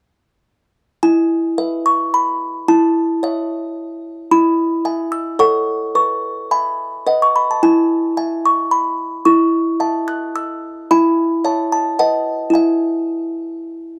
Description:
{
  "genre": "classical, lullaby for music box",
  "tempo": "109 BPM",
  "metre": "3/4",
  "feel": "straight",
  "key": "E major",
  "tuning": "A4 = 442 Hz",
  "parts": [
    { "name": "music box", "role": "solo", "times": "1.0-14.0 s", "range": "E4 to F#6", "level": "-17 LUFS", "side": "equal", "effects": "none" }
  ],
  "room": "small room reverb",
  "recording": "dry, close 1970s-style studio recording",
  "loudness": "-17 LUFS",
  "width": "mono",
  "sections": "1.0-14.0 A section",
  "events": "none",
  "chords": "1.0 E; 2.7 A/E; 4.3 E; 5.4 F#m/A; 5.9 E/B; 7.1 B; 7.6 E; 9.3 A/E; 10.9 E; 11.4 A/C#; 12.0 B7; 12.6 E",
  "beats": "| 1.03 1.58 2.14 | 2.69 3.23 3.77 | 4.31 4.85 5.39 | 5.95 6.51 7.07 | 7.62 8.18 8.72 | 9.27 9.81 10.36 | 10.90 11.44 11.99 | 12.55 13.12 13.69"
}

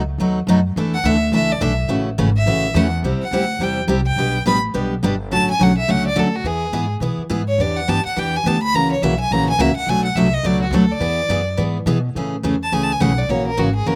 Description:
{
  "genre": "acoustic string swing (jazz manouche)",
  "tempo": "211 BPM",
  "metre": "4/4",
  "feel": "swing 59% on 8ths",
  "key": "A major",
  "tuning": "A4 = 441 Hz",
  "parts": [
    { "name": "upright bass", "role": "bass", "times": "0.0-14.0 s", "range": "F#1 to B2", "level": "-25 LUFS", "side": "equal", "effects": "none" },
    { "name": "picked steel-string acoustic guitar", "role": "accompaniment", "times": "0.2-14.0 s", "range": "B2 to B4", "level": "-21 LUFS", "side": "equal", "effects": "none" },
    { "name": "clear violin", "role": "melody", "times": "0.9-14.0 s", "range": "F#4 to B5", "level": "-23 LUFS", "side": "equal", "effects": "none" }
  ],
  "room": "little or no reverb",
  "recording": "recorded outdoors, with no room sound",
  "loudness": "-18 LUFS",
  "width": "mono",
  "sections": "0.0-3.0 A section; 3.0-12.2 A section; 12.2-14.0 A section",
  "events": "violin solo 0.0-12.2, 12.2-14.0",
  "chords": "0.0 B7; 0.8 E7sus4; 1.9 A6; 3.0 C; 4.2 G; 5.3 Dmaj7; 6.5 E; 7.6 Em7; 8.7 F#7; 9.9 Bm7; 11.0 E; 12.2 Amaj7; 13.3 F#7",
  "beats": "0.19 0.47 | 0.76 1.04 1.33 1.61 | 1.90 2.18 2.47 2.75 | 3.04 3.32 3.61 3.89 | 4.18 4.46 4.75 5.03 | 5.32 5.60 5.89 6.17 | 6.46 6.74 7.03 7.31 | 7.59 7.88 8.16 8.45 | 8.73 9.02 9.30 9.59 | 9.87 10.16 10.44 10.73 | 11.01 11.30 11.58 11.87 | 12.15 12.44 12.72 13.01 | 13.29 13.58 13.86"
}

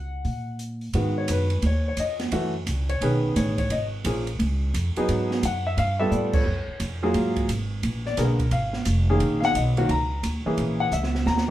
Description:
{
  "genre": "jazz piano trio",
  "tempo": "174 BPM",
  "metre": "4/4",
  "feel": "swing 64% on 8ths",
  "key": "G# dorian",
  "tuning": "A4 = 436 Hz",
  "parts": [
    { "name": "warm concert grand piano", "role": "melody", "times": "0.0-11.5 s", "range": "D3 to A#5", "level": "-25 LUFS", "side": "left 1 dB", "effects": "none" },
    { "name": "upright bass", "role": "bass", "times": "0.0-11.5 s", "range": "E#1 to Bb2", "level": "-25 LUFS", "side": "equal", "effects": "none" },
    { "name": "open jazz drum kit", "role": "drums", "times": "0.2-11.5 s", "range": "crash cymbal, hi-hat, kick drum, ride cymbal, snare drum", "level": "-31 LUFS", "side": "right 2 dB", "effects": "none" }
  ],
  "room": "moderate studio reverb, RT60 0.5 s",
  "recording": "band playing live in one room",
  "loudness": "-22 LUFS",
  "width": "side -13 dB against mid",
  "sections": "0.9-11.5 A section",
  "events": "drum fill 6.1-6.5, 10.9-11.5; band accent 6.3",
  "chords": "0.0 Ebm7 (rootless); 0.9 G#m7; 2.3 F#m7; 3.0 B9; 3.7 C#6; 5.1 G#m7; 5.8 G9; 6.5 F#maj9; 7.8 A#7b9; 9.2 D#7(no3); 10.6 A#m7b5",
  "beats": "0.25 0.59 | 0.94 1.28 1.63 1.98 | 2.32 2.67 3.01 3.35 | 3.70 4.04 4.39 4.73 | 5.08 5.42 5.77 6.11 | 6.45 6.80 7.14 7.49 | 7.83 8.17 8.52 8.86 | 9.20 9.55 9.89 10.23 | 10.58 10.92 11.27"
}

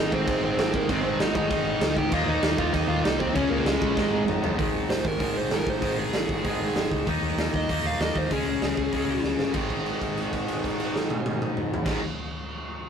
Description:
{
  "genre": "punk rock",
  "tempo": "194 BPM",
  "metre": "4/4",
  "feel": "straight",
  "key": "Ab major",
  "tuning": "A4 = 440 Hz",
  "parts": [
    { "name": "dark smooth lead guitar", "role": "melody", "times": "0.0-9.2 s", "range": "Ab3 to G5", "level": "-29 LUFS", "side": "right 2 dB", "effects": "overdrive" },
    { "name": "distorted electric guitar", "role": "riff", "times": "0.0-12.0 s", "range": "Ab2 to Eb4", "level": "-28 LUFS", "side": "left 4 dB", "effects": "distortion" },
    { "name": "distorted electric guitar", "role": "riff", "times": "0.0-12.0 s", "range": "Ab2 to Eb4", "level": "-32 LUFS", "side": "right 7 dB", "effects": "overdrive" },
    { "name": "fuzz guitar", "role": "riff", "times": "0.0-4.6 s", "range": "Ab2 to F4", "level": "-35 LUFS", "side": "right 1 dB", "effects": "none" },
    { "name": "hollow-body short-scale fingered electric bass", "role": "bass", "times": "0.0-12.0 s", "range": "G1 to Eb2", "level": "-33 LUFS", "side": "equal", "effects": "none" },
    { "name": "raw garage drum kit", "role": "drums", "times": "0.1-11.9 s", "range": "crash cymbal, hi-hat, kick drum, snare drum, toms", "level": "-28 LUFS", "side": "right 1 dB", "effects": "none" }
  ],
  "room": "light reverb",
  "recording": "rough rehearsal-room recording, tube saturation",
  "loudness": "-23 LUFS",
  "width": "side -7 dB against mid",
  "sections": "0.0-4.6 A section; 4.6-9.5 B section; 9.5-12.0 C section",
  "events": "drum fill 4.0-4.6, 9.2-9.5; lead electric guitar solo 4.6-9.5; held note 9.5-11.9",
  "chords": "0.0 Ab; 2.1 Eb; 3.4 Db; 4.0 Ab; 7.1 Eb5; 8.3 Db5; 9.5 Ab5",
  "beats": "0.28 0.58 | 0.89 1.20 1.51 1.81 | 2.12 2.43 2.74 3.04 | 3.35 3.66 3.97 4.28 | 4.58 4.89 5.20 5.51 | 5.82 6.13 6.44 6.75 | 7.06 7.37 7.68 7.99 | 8.30 8.61 8.93 9.24 | 9.55 9.86 10.17 10.48 | 10.79 11.11 11.42 11.73"
}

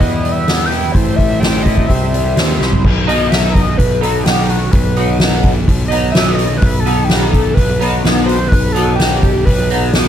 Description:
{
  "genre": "psychedelic rock",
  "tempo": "127 BPM",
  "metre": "4/4",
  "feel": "straight",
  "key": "B phrygian dominant",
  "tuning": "A4 = 436 Hz",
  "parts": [
    { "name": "overdriven synth lead", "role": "melody", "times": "0.0-9.7 s", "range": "F#4 to G5", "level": "-20 LUFS", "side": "equal", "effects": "distortion, chorus, phaser, analog delay" },
    { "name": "combo organ", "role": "sustained chords", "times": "0.0-2.8 s", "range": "B3 to C5", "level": "-27 LUFS", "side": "right 4 dB", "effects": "none" },
    { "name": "twangy electric guitar", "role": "riff", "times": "0.0-10.1 s", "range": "A2 to E4", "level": "-18 LUFS", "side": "equal", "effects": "flanger, double-tracked left and right" },
    { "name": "fuzz picked electric bass", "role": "bass", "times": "0.0-10.1 s", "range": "A1 to E2", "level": "-17 LUFS", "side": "equal", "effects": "overdrive" },
    { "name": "soft-mallet drum kit", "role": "drums", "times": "0.0-10.1 s", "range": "crash cymbal, hi-hat, kick drum, snare drum, toms", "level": "-14 LUFS", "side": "equal", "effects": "none" }
  ],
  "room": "little or no reverb",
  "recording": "none",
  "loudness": "-11 LUFS",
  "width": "side -10 dB against mid",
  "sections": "0.0-2.8 A section; 2.8-10.1 B section",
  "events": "drum fill 2.6; analog synth lead solo 2.8-10.1",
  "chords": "0.0 Em; 1.0 Am7; 1.9 C; 2.8 B",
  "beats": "0.01 0.48 | 0.95 1.43 1.90 2.37 | 2.84 3.31 3.79 4.26 | 4.73 5.21 5.68 6.15 | 6.63 7.10 7.58 8.05 | 8.52 9.00 9.47 9.95"
}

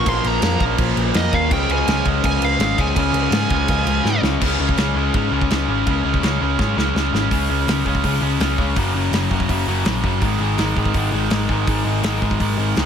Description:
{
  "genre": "punk rock",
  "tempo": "165 BPM",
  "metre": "4/4",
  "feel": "straight",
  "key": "unclear",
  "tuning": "A4 = 441 Hz",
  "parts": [
    { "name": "high-gain lead guitar", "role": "melody", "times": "0.0-4.2 s", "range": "Eb5 to C6", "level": "-23 LUFS", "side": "right 1 dB", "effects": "distortion" },
    { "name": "crunchy overdriven guitar", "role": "riff", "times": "0.0-12.9 s", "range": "Gb2 to Db4", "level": "-23 LUFS", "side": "left 16 dB", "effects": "none" },
    { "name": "distorted electric guitar", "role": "riff", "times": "0.0-4.4 s", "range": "Bb2 to Db4", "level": "-26 LUFS", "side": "left 1 dB", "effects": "distortion" },
    { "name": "tight distorted guitar", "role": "riff", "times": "0.0-12.9 s", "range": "Gb2 to Db4", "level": "-23 LUFS", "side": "right 13 dB", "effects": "distortion" },
    { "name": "overdriven picked electric bass", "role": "bass", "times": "0.1-12.9 s", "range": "Gb1 to Ab2", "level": "-22 LUFS", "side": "equal", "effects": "none" },
    { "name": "loose indie drum kit", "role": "drums", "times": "0.1-12.9 s", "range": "crash cymbal, hi-hat, kick drum, snare drum", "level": "-22 LUFS", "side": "equal", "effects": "none" }
  ],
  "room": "little or no reverb",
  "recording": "none",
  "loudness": "-16 LUFS",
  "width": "side -8 dB against mid",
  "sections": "0.0-4.4 A section; 4.4-7.3 B section; 7.3-12.9 C section",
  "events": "drum fill 4.1-4.4, 6.6-7.3",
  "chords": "0.0 Bbm; 1.5 Db; 4.4 Db5; 8.8 Gb5; 10.2 Ab5",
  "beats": "| 0.06 0.43 0.79 1.15 | 1.52 1.88 2.24 2.60 | 2.97 3.33 3.69 4.05 | 4.42 4.78 5.14 5.50 | 5.87 6.23 6.59 6.96 | 7.32 7.68 8.04 8.41 | 8.77 9.13 9.50 9.86 | 10.22 10.59 10.95 11.31 | 11.68 12.04 12.40 12.77"
}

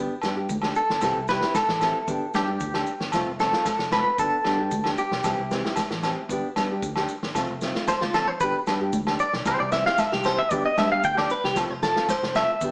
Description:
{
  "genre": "highlife guitar band",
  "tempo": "114 BPM",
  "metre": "4/4",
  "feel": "straight",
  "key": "G mixolydian",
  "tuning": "A4 = 440 Hz",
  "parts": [
    { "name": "nylon-string guitar", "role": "accompaniment", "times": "0.0-12.7 s", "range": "E3 to G4", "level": "-33 LUFS", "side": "equal", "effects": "none" },
    { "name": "fingered electric bass", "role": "bass", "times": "0.0-12.7 s", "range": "F1 to G2", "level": "-36 LUFS", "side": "equal", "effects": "none" },
    { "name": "vintage drum kit", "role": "drums", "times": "0.2-12.7 s", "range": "kick drum, snare drum", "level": "-33 LUFS", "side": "equal", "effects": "none" },
    { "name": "agogo bells", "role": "percussion", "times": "0.2-12.5 s", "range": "none", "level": "-33 LUFS", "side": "equal", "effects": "none" },
    { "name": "maracas", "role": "percussion", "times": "0.2-12.7 s", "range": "none", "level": "-46 LUFS", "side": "equal", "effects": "none" },
    { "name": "congas", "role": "percussion", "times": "0.5-12.7 s", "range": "none", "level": "-36 LUFS", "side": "equal", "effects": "none" },
    { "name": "clean electric guitar", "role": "arpeggios", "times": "0.8-12.7 s", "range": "F4 to G5", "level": "-26 LUFS", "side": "equal", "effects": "tremolo" }
  ],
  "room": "moderate stone room reverb, RT60 1.1 s",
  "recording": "band playing live in one room, small speaker sound",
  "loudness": "-24 LUFS",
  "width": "mono",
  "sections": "0.0-12.7 A section",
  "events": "clean electric guitar solo 0.0-12.7; drum fill 7.8-8.4",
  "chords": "0.0 G; 1.0 C; 2.1 G; 3.1 F; 4.2 G; 5.3 C; 6.3 G; 7.4 F; 8.4 G; 9.5 C; 10.5 G; 11.6 F",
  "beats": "0.50 1.03 1.56 | 2.09 2.62 3.14 3.67 | 4.20 4.73 5.25 5.78 | 6.31 6.83 7.36 7.89 | 8.41 8.94 9.47 9.99 | 10.52 11.04 11.57 12.09 | 12.62"
}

